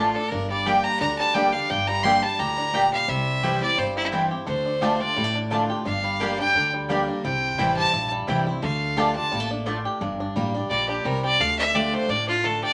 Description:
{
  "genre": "bluegrass",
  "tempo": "173 BPM",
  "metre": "4/4",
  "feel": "swing 54% on 8ths",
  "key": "unclear",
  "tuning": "A4 = 440 Hz",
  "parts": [
    { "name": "clear fiddle", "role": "melody", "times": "0.0-12.7 s", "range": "E4 to C6", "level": "-26 LUFS", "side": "equal", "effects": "none" },
    { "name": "picked steel-string acoustic guitar", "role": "accompaniment", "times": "0.0-12.7 s", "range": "G2 to G4", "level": "-31 LUFS", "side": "equal", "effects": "none" },
    { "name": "bluegrass banjo", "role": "arpeggios", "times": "0.0-12.7 s", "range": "D3 to G4", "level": "-33 LUFS", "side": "equal", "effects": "none" },
    { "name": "mandolin", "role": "stabs", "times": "0.0-9.8 s", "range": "A3 to A5", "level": "-26 LUFS", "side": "equal", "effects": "none" },
    { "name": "upright bass", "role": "bass", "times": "0.0-12.6 s", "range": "G1 to D2", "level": "-35 LUFS", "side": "equal", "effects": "none" }
  ],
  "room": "wet studio reverb, RT60 0.8 s",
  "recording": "none",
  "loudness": "-23 LUFS",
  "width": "mono",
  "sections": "0.0-10.0 A section; 10.0-12.7 A section",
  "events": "fiddle solo 0.0-12.7",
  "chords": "0.3 Gm; 3.1 C; 4.5 Dm; 5.9 Gm; 7.2 C; 8.6 Dm; 10.0 Gm; 11.4 Dm"
}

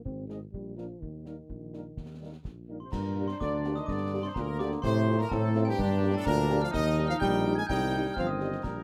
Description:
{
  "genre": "military-style march for wind band",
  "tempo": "126 BPM",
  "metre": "2/4",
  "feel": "straight",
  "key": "unclear",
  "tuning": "A4 = 440 Hz",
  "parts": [
    { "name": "mellow euphonium", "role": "second line", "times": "0.0-8.8 s", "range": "G2 to C4", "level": "-38 LUFS", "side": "equal", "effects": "none" },
    { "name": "mellow tuba", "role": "bass", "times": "0.1-8.8 s", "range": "G1 to A2", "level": "-34 LUFS", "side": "equal", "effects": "none" },
    { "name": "concert bass drum, concert snare drum and clash cymbals", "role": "drums", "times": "0.1-8.8 s", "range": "none", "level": "-43 LUFS", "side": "equal", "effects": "none" },
    { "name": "warm trumpet section", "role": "melody", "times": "0.3-8.8 s", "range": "G4 to Ab5", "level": "-38 LUFS", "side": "equal", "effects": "none" },
    { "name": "dark French horn section", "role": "accompaniment", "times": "0.3-8.5 s", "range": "F3 to G4", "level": "-38 LUFS", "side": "equal", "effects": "none" },
    { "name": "glockenspiel with hard plastic mallets", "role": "second line", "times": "2.8-8.8 s", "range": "G5 to Ab6", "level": "-40 LUFS", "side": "equal", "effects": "none" },
    { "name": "mellow trombone section", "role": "sustained chords", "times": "2.9-8.8 s", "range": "G3 to Eb4", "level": "-39 LUFS", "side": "equal", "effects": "none" }
  ],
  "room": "little or no reverb",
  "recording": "close, detailed microphones",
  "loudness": "-29 LUFS",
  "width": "mono",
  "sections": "0.0-2.9 A section; 2.9-8.8 B section",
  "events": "none",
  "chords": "0.1 Ab; 0.5 Bb; 1.0 Eb; 2.9 Gm; 4.8 F/A; 5.8 Gm; 6.7 Eb; 7.7 Cm"
}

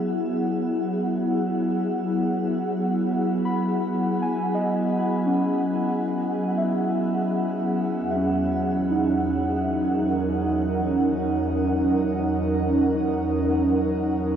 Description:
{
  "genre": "ambient",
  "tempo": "free time",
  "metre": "none",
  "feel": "none",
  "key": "E lydian",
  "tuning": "A4 = 440 Hz",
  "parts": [
    { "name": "airy breathy pad", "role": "sustained chords", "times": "0.0-14.4 s", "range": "E2 to F#5", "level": "-22 LUFS", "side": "equal", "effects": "chorus, shimmer reverb" },
    { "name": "muted felt-like synth keys", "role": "arpeggios", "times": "0.0-14.4 s", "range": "C#4 to B5", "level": "-28 LUFS", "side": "equal", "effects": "chorus, diffuse ambient delay, shimmer reverb" }
  ],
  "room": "wet concert hall reverb, RT60 2.0 s",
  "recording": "none",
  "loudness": "-21 LUFS",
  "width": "side -8 dB against mid",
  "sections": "0.0-14.4 A section",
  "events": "fade-in on synth keys 0.0-14.4",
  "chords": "0.0 Emaj9; 8.0 D#m7/E"
}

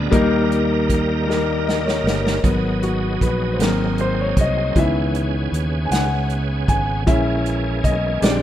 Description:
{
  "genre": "slow gospel",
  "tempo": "52 BPM (dotted quarters)",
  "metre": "6/8",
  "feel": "straight",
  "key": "G# minor",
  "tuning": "A4 = 440 Hz",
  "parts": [
    { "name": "warm concert grand piano", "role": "accompaniment", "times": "0.0-8.4 s", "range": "A#2 to G#5", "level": "-20 LUFS", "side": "left 2 dB", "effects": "none" },
    { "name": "bright tonewheel organ", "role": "sustained chords", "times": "0.0-8.4 s", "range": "C#3 to A#4", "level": "-26 LUFS", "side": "right 4 dB", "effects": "slow rotary speaker, chorus vibrato" },
    { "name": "fingered electric bass", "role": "bass", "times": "0.0-8.4 s", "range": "G1 to D#2", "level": "-23 LUFS", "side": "right 1 dB", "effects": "none" },
    { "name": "warm soul drum kit", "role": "drums", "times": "0.1-8.4 s", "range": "hi-hat, kick drum, snare drum", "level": "-21 LUFS", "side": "right 1 dB", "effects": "none" }
  ],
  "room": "light reverb, small room ambience",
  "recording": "rough home demo mix",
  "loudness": "-17 LUFS",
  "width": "side -12 dB against mid",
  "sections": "0.0-2.4 A section; 2.4-8.4 B section",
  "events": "drum fill 1.3-2.4; grand piano solo 2.4-8.4",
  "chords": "0.1 D#; 2.4 G#m7; 3.6 G#7; 4.8 C#m7; 7.1 A#m7b5"
}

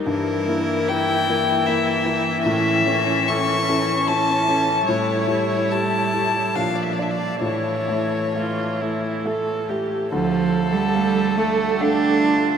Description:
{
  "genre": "classical, slow romantic movement for piano quartet",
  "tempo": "65-80 BPM",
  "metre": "3/4",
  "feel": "rubato",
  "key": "D minor",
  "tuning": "A4 = 440 Hz",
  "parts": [
    { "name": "warm cello", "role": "second line", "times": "0.0-12.6 s", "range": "E3 to D4", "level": "-24 LUFS", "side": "right 5 dB", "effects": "none" },
    { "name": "rich viola", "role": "accompaniment", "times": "0.0-12.5 s", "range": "C#4 to A4", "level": "-28 LUFS", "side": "right 2 dB", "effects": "none" },
    { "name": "warm grand piano", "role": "accompaniment", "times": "0.0-12.6 s", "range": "D2 to F5", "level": "-24 LUFS", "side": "left 2 dB", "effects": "none" },
    { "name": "warm violin", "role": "melody", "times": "0.1-12.6 s", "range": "F4 to C#6", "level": "-23 LUFS", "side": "left 4 dB", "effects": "none" }
  ],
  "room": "wet huge ambient reverb, RT60 8.3 s",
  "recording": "in a vast, echoing space",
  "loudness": "-18 LUFS",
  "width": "side -7 dB against mid",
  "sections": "0.0-10.1 A section; 10.1-12.6 B section",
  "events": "none",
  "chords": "0.1 Edim/G; 2.4 A; 4.9 A7; 6.6 Bb; 7.4 A; 10.1 Dm"
}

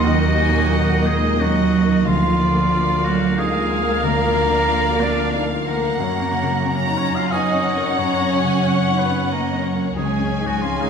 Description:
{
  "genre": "cinematic, emotional film score for orchestra",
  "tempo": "91 BPM",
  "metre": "3/4",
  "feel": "rubato",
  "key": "unclear",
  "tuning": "A4 = 440 Hz",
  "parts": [
    { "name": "dark symphonic violin section", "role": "melody", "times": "0.0-10.9 s", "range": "Eb5 to Ab5", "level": "-27 LUFS", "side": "left 4 dB", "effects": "none" },
    { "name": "rich symphonic violin section", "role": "second line", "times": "0.0-10.9 s", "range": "Db5 to Bb5", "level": "-29 LUFS", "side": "left 3 dB", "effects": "none" },
    { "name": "warm oboe", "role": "second line", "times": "0.0-10.9 s", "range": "Eb4 to F5", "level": "-24 LUFS", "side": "right 1 dB", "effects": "none" },
    { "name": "rich symphonic viola section", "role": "accompaniment", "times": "0.0-10.9 s", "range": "Bb3 to Db5", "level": "-25 LUFS", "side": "left 1 dB", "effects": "none" },
    { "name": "warm grand piano", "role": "accompaniment", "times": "0.0-10.9 s", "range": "Db2 to Bb4", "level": "-26 LUFS", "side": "left 3 dB", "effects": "none" },
    { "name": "concert harp", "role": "arpeggios", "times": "0.0-10.9 s", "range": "Gb2 to Bb5", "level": "-28 LUFS", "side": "left 3 dB", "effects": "none" },
    { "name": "rich symphonic cello section", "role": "bass", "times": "0.0-10.9 s", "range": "Eb3 to F4", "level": "-23 LUFS", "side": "right 4 dB", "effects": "none" },
    { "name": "rich symphonic double bass section", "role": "bass", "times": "0.0-10.9 s", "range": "Db2 to Gb2", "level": "-24 LUFS", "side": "right 3 dB", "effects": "none" }
  ],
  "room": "wet recital hall reverb, RT60 1.8 s",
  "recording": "recorded in a church or concert hall",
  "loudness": "-16 LUFS",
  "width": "side -6 dB against mid",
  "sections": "0.0-10.9 A section",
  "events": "none",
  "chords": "0.0 Ebm; 2.1 Bb/D; 6.0 Gb; 10.0 Db"
}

